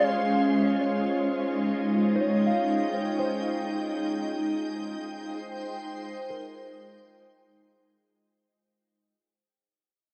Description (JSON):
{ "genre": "ambient", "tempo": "58 BPM", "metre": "4/4", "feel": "straight", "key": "Ab major", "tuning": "A4 = 440 Hz", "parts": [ { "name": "soft additive organ-like pad", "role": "sustained chords", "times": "0.0-8.4 s", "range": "Ab3 to G5", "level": "-29 LUFS", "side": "equal", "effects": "ensemble chorus, built-in reverb, cassette tape" }, { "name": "mellow electric guitar", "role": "arpeggios", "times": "0.0-8.0 s", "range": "G4 to F5", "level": "-35 LUFS", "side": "equal", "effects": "tremolo, cassette tape, tape echo" }, { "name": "bowed-like drone", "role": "drone", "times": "0.0-8.5 s", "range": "Ab3 to F4", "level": "-39 LUFS", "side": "equal", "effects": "built-in reverb, cassette tape" } ], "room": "wet studio reverb, RT60 0.5 s", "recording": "home recording on cassette", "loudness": "-28 LUFS", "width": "mono", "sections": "0.0-8.4 A section", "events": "fade-in on clean electric guitar 0.0-8.4; fade-out 2.8-8.4", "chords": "0.0 Dbmaj7/Ab; 4.2 Abmaj7" }